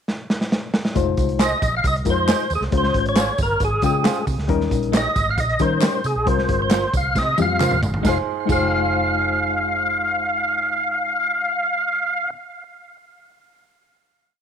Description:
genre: uptempo 1960s-style soul.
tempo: 135 BPM.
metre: 4/4.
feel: straight.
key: F minor.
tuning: A4 = 445 Hz.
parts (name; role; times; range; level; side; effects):
crunchy breakbeat drum kit; drums; 0.1-8.6 s; crash cymbal, hi-hat, kick drum, snare drum, toms; -22 LUFS; right 1 dB; none.
reed electric piano; accompaniment; 1.0-12.3 s; G3 to G5; -24 LUFS; left 10 dB; overdrive, fast tremolo.
vintage muted fingered electric bass; bass; 1.0-12.3 s; F1 to Eb3; -25 LUFS; right 1 dB; none.
tambourine and handclaps; percussion; 1.0-8.6 s; none; -33 LUFS; left 2 dB; none.
percussive tonewheel organ; melody; 1.4-12.3 s; Ab4 to F5; -21 LUFS; equal; overdrive, chorus vibrato, slow rotary speaker, tape echo.
electric guitar through a small old amp; stabs; 1.4-12.3 s; Eb4 to F5; -28 LUFS; right 12 dB; none.
room: small room reverb.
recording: 1960s-style stereo with parts hard left and right.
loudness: -18 LUFS.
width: side -8 dB against mid.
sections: 0.0-1.0 pickup bar; 1.0-8.0 verse; 8.0-11.6 final chord.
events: drum fill 0.1-1.0, 7.2-8.0.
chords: 0.0 N.C.; 1.0 Fm7; 2.7 Dbmaj7; 4.5 Eb7; 6.3 C7sus4; 8.0 Fm7.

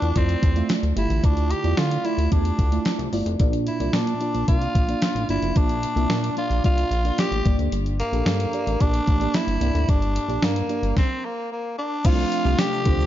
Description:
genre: 1980s-style pop.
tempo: 111 BPM.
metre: 4/4.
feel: straight.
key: C mixolydian.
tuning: A4 = 441 Hz.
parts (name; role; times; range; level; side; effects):
raspy tenor saxophone; melody; 0.0-13.1 s; Bb3 to G4; -27 LUFS; equal; none.
mellow FM electric piano; accompaniment; 0.0-13.1 s; G2 to E5; -27 LUFS; right 1 dB; chorus, phaser.
chorused synth bass; bass; 0.0-13.1 s; F1 to D3; -24 LUFS; equal; none.
clean 12-bit digital drum machine; drums; 0.0-13.0 s; crash cymbal, hi-hat, kick drum, snare drum, tambourine; -22 LUFS; equal; none.
marimba with soft mallets; second line; 11.8-13.1 s; D5 to G5; -37 LUFS; left 1 dB; none.
tube shaker; percussion; 12.0-13.1 s; none; -50 LUFS; right 9 dB; none.
brassy analog pad; sustained chords; 12.1-13.1 s; C3 to D4; -31 LUFS; left 2 dB; chorus.
room: light reverb, digital ambience.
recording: dark, warm production, nothing above 7.4 kHz.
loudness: -20 LUFS.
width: side -12 dB against mid.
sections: 0.0-12.0 A section; 12.0-13.1 B section.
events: stop 11.0-12.0.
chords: 0.0 Cadd9 (rootless); 3.4 Bb; 7.5 Gm; 12.0 F6/C.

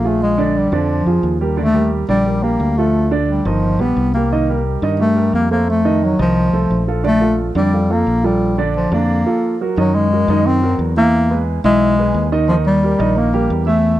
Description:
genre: Afro-Cuban jazz.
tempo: 176 BPM.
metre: 4/4.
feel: straight.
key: Bb major.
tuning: A4 = 440 Hz.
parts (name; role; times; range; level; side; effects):
warm bass clarinet; melody; 0.0-14.0 s; F3 to C4; -16 LUFS; left 1 dB; none.
warm upright piano; accompaniment; 0.0-13.9 s; D3 to E5; -19 LUFS; right 4 dB; none.
fingered electric bass; bass; 0.0-14.0 s; G1 to G2; -19 LUFS; left 1 dB; none.
room: studio reverb.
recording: dry, close 1970s-style studio recording.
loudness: -13 LUFS.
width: side -14 dB against mid.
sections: 0.0-9.8 A section; 9.8-14.0 B section.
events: none.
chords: 0.2 Bb6; 1.6 Ebmaj9; 2.9 Dm; 3.6 Gaug; 4.3 Cm7; 5.7 F7; 7.0 Bbmaj7; 9.8 Gb69; 11.1 E; 12.5 Eb.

